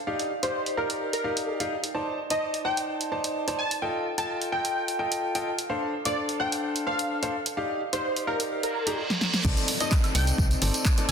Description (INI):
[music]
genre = piano house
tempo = 128 BPM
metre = 4/4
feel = swing 53% on 16ths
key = C dorian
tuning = A4 = 440 Hz
[part]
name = clear grand piano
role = riff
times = 0.1-11.1 s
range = C4 to Bb5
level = -29 LUFS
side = equal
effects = sidechain pumping, tape echo
[part]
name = punchy analog drum machine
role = drums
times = 0.2-11.1 s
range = crash cymbal, handclaps, hi-hat, snare drum, tambourine, woodblock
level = -29 LUFS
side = right 1 dB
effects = overdrive
[part]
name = plucky unison lead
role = melody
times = 0.4-11.1 s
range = Bb4 to A5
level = -30 LUFS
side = equal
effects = lush chorus, tape echo
[part]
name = reverse cymbal and downlifter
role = sound effects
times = 8.7-11.1 s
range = none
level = -33 LUFS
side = right 2 dB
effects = none
[part]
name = organ-like FM bass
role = bass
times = 9.4-11.1 s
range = G1 to C2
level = -26 LUFS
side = equal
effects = sidechain pumping
[part]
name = electronic kick drum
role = drums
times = 9.4-11.0 s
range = none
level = -23 LUFS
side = equal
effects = overdrive
[sound]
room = moderate lush hall reverb, RT60 1.9 s, digital ambience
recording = dense, heavily limited modern master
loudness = -25 LUFS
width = side -7 dB against mid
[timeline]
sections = 0.0-9.4 A section; 9.4-11.1 B section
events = filter sweep on drum 0.0-9.4; reverse cymbal 8.7-9.4; drum fill 9.1-9.4; drop 9.4-11.1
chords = 0.0 Ebmaj9; 1.9 Cm69; 3.8 F9; 5.7 Dm7; 7.3 Ebmaj9; 9.4 Cm69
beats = | 0.07 0.54 1.01 1.48 | 1.95 2.41 2.88 3.35 | 3.82 4.29 4.76 5.23 | 5.70 6.16 6.63 7.10 | 7.57 8.04 8.51 8.98 | 9.45 9.91 10.38 10.85